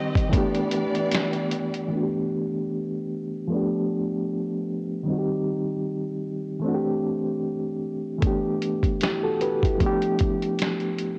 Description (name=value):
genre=lo-fi hip hop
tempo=76 BPM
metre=4/4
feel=swing 57% on 16ths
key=G major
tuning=A4 = 436 Hz
part: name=reed electric piano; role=accompaniment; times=0.0-11.2 s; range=Eb3 to B4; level=-27 LUFS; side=equal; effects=overdrive, fast tremolo, low-pass filter, cassette tape
part: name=warm studio string section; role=sustained chords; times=0.0-1.9 s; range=Eb3 to Eb5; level=-32 LUFS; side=equal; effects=low-pass filter, cassette tape
part: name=lo-fi sampler-style drum kit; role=drums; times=0.2-1.9, 8.2-11.2 s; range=hi-hat, kick drum, snare drum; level=-27 LUFS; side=equal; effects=cassette tape
room=light reverb, studio ambience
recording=home recording on cassette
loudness=-26 LUFS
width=mono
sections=0.0-1.9 A section; 1.9-11.2 B section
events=filter sweep on reed electric piano 1.9-11.2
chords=0.3 G69; 3.5 G7; 5.1 Cm; 6.6 D9sus4; 8.2 G69; 9.8 G7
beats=0.33 1.12 | 1.91 2.70 3.49 4.28 | 5.07 5.86 6.65 7.44 | 8.22 9.02 9.80 10.59